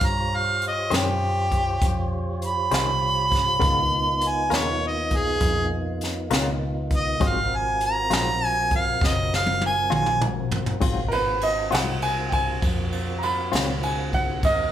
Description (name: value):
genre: slow blues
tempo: 67 BPM (dotted quarters)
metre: 12/8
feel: straight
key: Ab mixolydian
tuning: A4 = 444 Hz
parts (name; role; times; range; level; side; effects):
- warm harmonica; melody; 0.0-10.2 s; G4 to Cb6; -23 LUFS; right 2 dB; overdrive
- tonewheel organ; sustained chords; 0.0-14.7 s; Bb3 to F5; -32 LUFS; equal; slow rotary speaker
- vintage muted fingered electric bass; bass; 0.0-14.7 s; Gb1 to G2; -29 LUFS; equal; none
- jazz brush drum kit; drums; 0.0-14.6 s; crash cymbal, hi-hat, kick drum, ride cymbal, snare drum, toms; -26 LUFS; equal; none
- clean electric guitar; accompaniment; 0.9-13.7 s; Ab2 to C5; -29 LUFS; left 5 dB; tremolo
- bright upright piano; second line; 11.1-14.7 s; Bb4 to Cb6; -24 LUFS; right 2 dB; none
room: moderate large studio reverb, RT60 1.5 s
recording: band playing live in one room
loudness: -21 LUFS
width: side -11 dB against mid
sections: 0.0-10.8 A section; 10.8-14.7 A section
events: harmonica solo 0.0-10.8; drum fill 9.0-10.8; upright piano solo 10.8-14.7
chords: 0.0 Eb13 (rootless); 3.6 Db13; 7.2 Ab13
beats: | 0.01 0.91 1.81 2.71 | 3.61 4.51 5.41 6.31 | 7.21 8.11 9.01 9.91 | 10.82 11.72 12.62 13.52 | 14.43